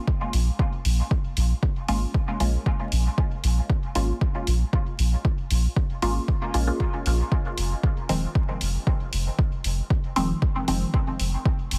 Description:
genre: dub techno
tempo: 116 BPM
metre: 4/4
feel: straight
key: unclear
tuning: A4 = 442 Hz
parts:
  - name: electronic kick drum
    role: drums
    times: 0.1-11.6 s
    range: none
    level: -26 LUFS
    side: equal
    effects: none
  - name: pure sine sub bass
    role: bass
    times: 0.3-11.8 s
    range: Eb1 to Bb1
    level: -25 LUFS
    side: equal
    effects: sidechain pumping
  - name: electronic hi-hat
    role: drums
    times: 0.3-11.8 s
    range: none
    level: -36 LUFS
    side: equal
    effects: none
  - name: filtered dub chord stab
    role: stabs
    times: 1.9-10.9 s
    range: Eb3 to F4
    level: -32 LUFS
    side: equal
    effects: phaser, sidechain pumping, dub echo
room: little or no reverb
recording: heavily compressed radio sound, multiband compression, vinyl crackle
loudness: -25 LUFS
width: mono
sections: 0.0-11.8 A section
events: none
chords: 0.0 Bbm7; 7.3 Fm7

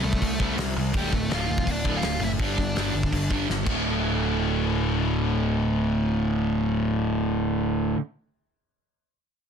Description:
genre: punk rock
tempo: 166 BPM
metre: 4/4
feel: straight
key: unclear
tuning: A4 = 440 Hz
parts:
  - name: dark smooth lead guitar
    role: melody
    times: 0.0-3.5 s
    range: G3 to F5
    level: -30 LUFS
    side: equal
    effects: overdrive
  - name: sludgy distorted guitar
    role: riff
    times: 0.0-8.0 s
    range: D2 to F#4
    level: -28 LUFS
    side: left 10 dB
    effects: overdrive
  - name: sludgy distorted guitar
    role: riff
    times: 0.0-8.0 s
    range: D2 to C4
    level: -28 LUFS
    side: right 12 dB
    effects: overdrive
  - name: fuzz picked electric bass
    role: bass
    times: 0.0-7.9 s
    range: D1 to C2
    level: -29 LUFS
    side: equal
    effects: overdrive
  - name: loose indie drum kit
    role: drums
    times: 0.1-3.7 s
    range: crash cymbal, hi-hat, kick drum, snare drum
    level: -29 LUFS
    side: equal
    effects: none
room: light reverb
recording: dense, heavily limited modern master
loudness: -22 LUFS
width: side -7 dB against mid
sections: 0.0-3.8 A section; 3.8-6.7 B section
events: drum fill 3.5-3.8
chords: 0.0 C5; 0.9 Dm; 2.4 G5; 3.7 D

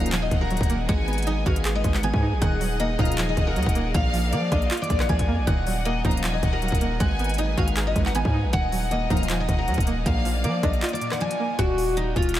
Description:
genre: hip hop, trap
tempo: 157 BPM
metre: 4/4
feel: half-time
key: Eb harmonic minor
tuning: A4 = 441 Hz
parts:
  - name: picked steel-string acoustic guitar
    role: melody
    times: 0.0-12.4 s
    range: Eb4 to Ab5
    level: -28 LUFS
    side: left 2 dB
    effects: analog chorus, low-pass filter, diffuse ambient delay
  - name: bright studio violin section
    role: second line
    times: 0.0-10.8 s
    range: F5 to Bb5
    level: -34 LUFS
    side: equal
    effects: diffuse ambient delay
  - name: string-like resonator pluck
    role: accompaniment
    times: 0.0-11.6 s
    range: Bb2 to Ab4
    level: -30 LUFS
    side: right 2 dB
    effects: chorus, low-pass filter
  - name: warm chamber string section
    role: sustained chords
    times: 0.0-11.6 s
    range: Eb3 to Eb5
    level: -33 LUFS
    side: left 1 dB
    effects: none
  - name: mellow synth brass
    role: stabs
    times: 0.0-0.1, 3.0-3.2, 6.0-6.2, 9.1-9.3 s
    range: Gb2 to F3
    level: -36 LUFS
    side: left 1 dB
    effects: none
  - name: distorted 808-style bass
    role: bass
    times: 0.0-12.4 s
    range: Eb1 to F3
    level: -26 LUFS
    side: equal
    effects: distortion
  - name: trap drum kit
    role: drums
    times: 0.0-12.4 s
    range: handclaps, hi-hat, kick drum, rim click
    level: -26 LUFS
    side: equal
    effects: none
room: moderate huge ambient reverb, RT60 7.3 s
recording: dreamy mix soaked in reverb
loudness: -21 LUFS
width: side -13 dB against mid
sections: 0.0-11.6 A section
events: break 10.8-11.6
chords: 0.0 Ebmadd9; 0.9 Abm7; 2.4 Ebmadd9; 3.9 Bb; 5.5 Ebmadd9; 7.0 Abm7; 8.5 Ebmadd9; 10.1 Bb; 11.6 Ebm

